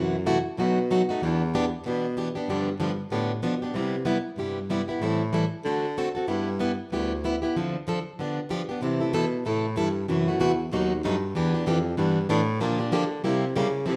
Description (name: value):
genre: acoustic string swing (jazz manouche)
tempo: 190 BPM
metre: 4/4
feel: swing 58% on 8ths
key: G major, C major from 8.8 s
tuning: A4 = 439 Hz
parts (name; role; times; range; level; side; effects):
- picked plugged-in steel-string acoustic guitar; accompaniment; 0.0-14.0 s; B2 to A4; -28 LUFS; equal; none
- breathy baritone saxophone; bass; 0.0-14.0 s; D2 to D3; -30 LUFS; equal; none
room: wet large studio reverb, RT60 1.1 s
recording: band playing live in one room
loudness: -26 LUFS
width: mono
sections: 0.0-8.8 A section; 8.8-14.0 B section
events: break 7.6-8.8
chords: 0.0 F#m7b5; 0.6 B7; 1.2 Em7; 2.5 G7; 3.8 Cmaj7; 5.0 Am7; 5.7 D7; 6.3 G6; 7.6 Dm7; 8.2 G7; 8.8 C6; 10.1 F#m7b5; 10.7 B7b13; 11.4 Em7; 12.6 Gm7; 13.2 C7b9